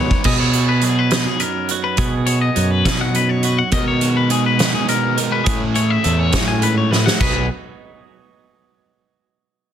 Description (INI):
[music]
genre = math rock and midwest emo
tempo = 69 BPM (dotted quarters)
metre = 6/8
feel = straight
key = B major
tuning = A4 = 440 Hz
[part]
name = twangy electric guitar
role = arpeggios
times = 0.0-7.5 s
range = G#4 to G#5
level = -21 LUFS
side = left 8 dB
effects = none
[part]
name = crunchy overdriven guitar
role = riff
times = 0.0-0.3, 3.7-7.4 s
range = A2 to E4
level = -25 LUFS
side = equal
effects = none
[part]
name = growling fingered electric bass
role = bass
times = 0.0-7.5 s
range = B1 to B2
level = -19 LUFS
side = equal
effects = overdrive
[part]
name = loose indie drum kit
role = drums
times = 0.1-7.3 s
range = crash cymbal, hi-hat, kick drum, snare drum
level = -20 LUFS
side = right 1 dB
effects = none
[part]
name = twelve-string electric guitar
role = accompaniment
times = 0.3-7.5 s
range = F#2 to A#4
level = -23 LUFS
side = right 8 dB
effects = spring reverb
[sound]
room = light reverb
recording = dense, heavily limited modern master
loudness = -15 LUFS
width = side -9 dB against mid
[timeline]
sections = 0.3-7.2 A section; 7.2-8.9 B section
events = drum fill 0.0, 6.9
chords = 0.3 B6; 3.7 G#m11/B; 5.5 Amaj7; 7.2 B6